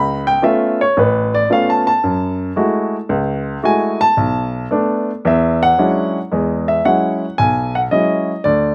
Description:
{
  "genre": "solo jazz",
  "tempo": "112 BPM",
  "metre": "4/4",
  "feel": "swing 69% on 8ths",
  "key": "unclear",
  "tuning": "A4 = 440 Hz",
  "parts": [
    { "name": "warm baby grand piano", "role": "solo", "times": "0.0-8.7 s", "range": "A1 to B5", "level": "-16 LUFS", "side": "equal", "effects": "none" }
  ],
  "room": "little or no reverb",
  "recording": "recorded outdoors, with no room sound",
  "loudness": "-16 LUFS",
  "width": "mono",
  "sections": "0.0-6.3 A section; 6.3-8.7 B section",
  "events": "grand piano solo 0.0-6.3",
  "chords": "0.0 C#aug7; 2.0 F#m9; 4.2 Bm7; 5.2 E13; 6.3 E69",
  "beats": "0.42 0.96 1.50 | 2.03 2.57 3.10 3.64 | 4.17 4.71 5.25 5.78 | 6.32 6.85 7.39 7.92 | 8.46"
}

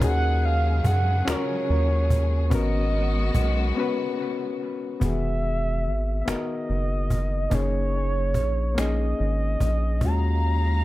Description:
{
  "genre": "slow six-eight R&B",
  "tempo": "48 BPM (dotted quarters)",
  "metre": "6/8",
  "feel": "straight",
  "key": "unclear",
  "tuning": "A4 = 440 Hz",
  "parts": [
    { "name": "mellow horn-like synth lead", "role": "melody", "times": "0.0-10.8 s", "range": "Db5 to Bb5", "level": "-29 LUFS", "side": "right 2 dB", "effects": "chorus, dub echo" },
    { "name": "bright reed electric piano", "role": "accompaniment", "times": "0.0-10.8 s", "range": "D#3 to Eb5", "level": "-29 LUFS", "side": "left 4 dB", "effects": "dub echo" },
    { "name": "warm studio string section", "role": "sustained chords", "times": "0.0-5.0, 10.0-10.8 s", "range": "Db3 to F5", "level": "-33 LUFS", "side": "left 1 dB", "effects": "none" },
    { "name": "rubbery square bass", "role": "bass", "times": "0.0-10.8 s", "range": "E1 to Gb2", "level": "-23 LUFS", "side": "equal", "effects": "none" },
    { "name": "cajon", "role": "drums", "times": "0.0-10.2 s", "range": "none", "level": "-28 LUFS", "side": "equal", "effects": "none" }
  ],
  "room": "studio ambience",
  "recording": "echo-heavy mix",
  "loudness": "-22 LUFS",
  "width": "side -16 dB against mid",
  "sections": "0.0-5.0 A section; 5.0-10.8 B section",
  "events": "break 3.8-5.0",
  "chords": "0.0 Ebm11; 2.5 Abm11; 5.0 Emaj9; 7.5 Gb69; 10.0 Ebm11",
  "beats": "| 0.01 1.26 | 2.52 3.77 | 5.01 6.26 | 7.51 8.77 | 10.02"
}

